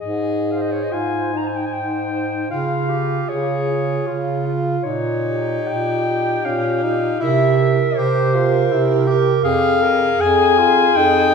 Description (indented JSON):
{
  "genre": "classical, lyrical piece for single-reed quartet",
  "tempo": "63-83 BPM",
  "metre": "3/4",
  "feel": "rubato",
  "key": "unclear",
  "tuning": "A4 = 440 Hz",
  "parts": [
    { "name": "clear clarinet", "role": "melody", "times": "0.0-11.3 s", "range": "C5 to Bb5", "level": "-21 LUFS", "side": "left 4 dB", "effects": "none" },
    { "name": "clear alto saxophone", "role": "second line", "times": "0.0-11.3 s", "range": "F4 to C5", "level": "-24 LUFS", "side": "right 4 dB", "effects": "none" },
    { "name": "warm tenor saxophone", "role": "accompaniment", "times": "0.0-11.3 s", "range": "Db4 to Bb4", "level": "-22 LUFS", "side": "left 1 dB", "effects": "none" },
    { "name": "warm bass clarinet", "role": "bass", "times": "0.0-11.3 s", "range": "F2 to Db3", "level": "-20 LUFS", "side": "right 2 dB", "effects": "none" }
  ],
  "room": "wet recital hall reverb, RT60 1.5 s",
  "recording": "heard from further back in the room",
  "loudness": "-16 LUFS",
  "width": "side -5 dB against mid",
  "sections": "0.0-11.3 A section",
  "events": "none",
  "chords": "0.0 Ab; 2.5 Db; 4.9 Gm7b5/Bb; 7.2 C7; 9.4 Fm"
}